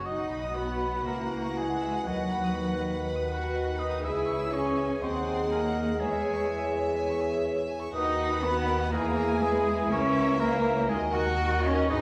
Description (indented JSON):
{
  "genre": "quick classical-period movement for symphony orchestra",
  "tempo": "122 BPM",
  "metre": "4/4",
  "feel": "rubato",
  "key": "B major",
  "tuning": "A4 = 440 Hz",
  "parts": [
    { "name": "clear chamber violin section", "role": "second line", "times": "0.0-12.0 s", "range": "G#4 to E6", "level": "-42 LUFS", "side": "equal", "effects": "none" },
    { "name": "clear oboe", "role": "second line", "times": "0.0-12.0 s", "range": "F#4 to F#5", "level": "-39 LUFS", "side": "equal", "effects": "none" },
    { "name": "concert flute", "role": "second line", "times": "0.0-12.0 s", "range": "F#5 to F#6", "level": "-37 LUFS", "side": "equal", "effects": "none" },
    { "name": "rich chamber violin section", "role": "melody", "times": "0.1-12.0 s", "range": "D#5 to G#5", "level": "-43 LUFS", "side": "equal", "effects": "none" },
    { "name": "bright clarinet", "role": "second line", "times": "0.1-12.0 s", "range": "F#4 to C#5", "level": "-40 LUFS", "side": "equal", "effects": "none" },
    { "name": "mellow bassoon", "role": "accompaniment", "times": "0.1-12.0 s", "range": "D#3 to F#3", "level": "-40 LUFS", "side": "equal", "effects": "none" },
    { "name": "warm symphonic viola section", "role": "accompaniment", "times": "0.1-12.0 s", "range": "E4 to B4", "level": "-39 LUFS", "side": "equal", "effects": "none" },
    { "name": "dark French horn section", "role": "sustained chords", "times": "0.1-12.0 s", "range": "E4 to E5", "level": "-37 LUFS", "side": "equal", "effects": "none" },
    { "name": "rich chamber double bass section", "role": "bass", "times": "0.1-12.0 s", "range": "G#1 to E2", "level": "-37 LUFS", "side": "equal", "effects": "none" },
    { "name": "warm chamber cello section", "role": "bass", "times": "0.1-12.0 s", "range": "F#3 to F#4", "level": "-34 LUFS", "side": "equal", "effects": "none" }
  ],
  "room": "wet recital hall reverb, RT60 1.5 s",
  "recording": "heard from further back in the room",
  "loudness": "-28 LUFS",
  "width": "mono",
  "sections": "0.1-12.0 A section",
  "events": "none",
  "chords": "0.1 B; 1.1 F#7/C#; 2.1 B/D#; 4.0 C#m; 5.0 G#7/D#; 6.0 C#m/E; 7.9 B/D#; 8.9 E; 9.9 A#dim/C#; 10.9 D#m"
}